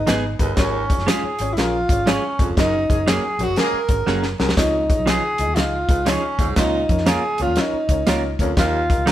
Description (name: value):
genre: uptempo 1960s-style soul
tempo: 120 BPM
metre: 4/4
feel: swing 65% on 8ths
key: Db mixolydian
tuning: A4 = 442 Hz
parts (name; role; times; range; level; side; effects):
- breathy tenor saxophone; melody; 0.0-9.1 s; C4 to Bb4; -22 LUFS; equal; none
- vintage muted fingered electric bass; bass; 0.0-9.1 s; F1 to F2; -26 LUFS; equal; none
- warm baby grand piano; accompaniment; 0.1-9.1 s; Ab2 to Eb5; -28 LUFS; left 4 dB; none
- clean electric guitar; stabs; 0.1-9.1 s; F3 to Bb4; -25 LUFS; right 4 dB; none
- warm soul drum kit; drums; 0.1-9.1 s; hi-hat, kick drum, snare drum; -20 LUFS; equal; none
- clear baritone saxophone; riff; 0.4-8.8 s; Eb2 to Bb2; -28 LUFS; right 4 dB; none
- warm horn section; second line; 2.9-3.8 s; Db3 to Ab4; -26 LUFS; equal; none
room: moderate studio reverb, RT60 1.0 s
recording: band playing live in one room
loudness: -17 LUFS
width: side -12 dB against mid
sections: 0.0-9.1 A section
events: band accent 2.6-4.6; drum fill 4.1-4.6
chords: 0.0 Abm; 0.6 Db; 2.6 Gbadd9; 4.6 Dbadd9; 6.6 Bbm/Db; 8.6 Ebadd9